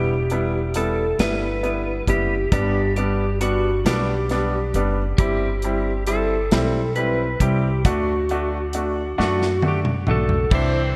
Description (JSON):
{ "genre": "six-eight pop ballad", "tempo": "45 BPM (dotted quarters)", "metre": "6/8", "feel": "straight", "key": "unclear", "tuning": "A4 = 440 Hz", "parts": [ { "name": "clean lap steel guitar", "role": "melody", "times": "0.0-11.0 s", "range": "F#4 to C5", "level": "-27 LUFS", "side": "equal", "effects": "delay" }, { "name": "clear concert grand piano", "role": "accompaniment", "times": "0.0-10.8 s", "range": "G3 to F#4", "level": "-27 LUFS", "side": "equal", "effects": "none" }, { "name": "upright bass", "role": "bass", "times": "0.0-11.0 s", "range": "E1 to F#2", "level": "-26 LUFS", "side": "equal", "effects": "none" }, { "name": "modern studio drum kit", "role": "drums", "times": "0.3-10.7 s", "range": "crash cymbal, hi-hat, kick drum, snare drum, toms", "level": "-25 LUFS", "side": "equal", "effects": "gated reverb" }, { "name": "direct-recorded clean electric guitar", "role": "arpeggios", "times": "10.5-11.0 s", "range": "E3 to C4", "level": "-33 LUFS", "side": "equal", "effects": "none" } ], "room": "moderate lush hall reverb, RT60 2.3 s", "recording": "bright 1980s-style digital production", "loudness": "-21 LUFS", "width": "mono", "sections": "0.0-10.5 A section", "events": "drum fill 9.2-10.5", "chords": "0.0 Em; 2.5 G; 5.2 C/G; 7.8 D" }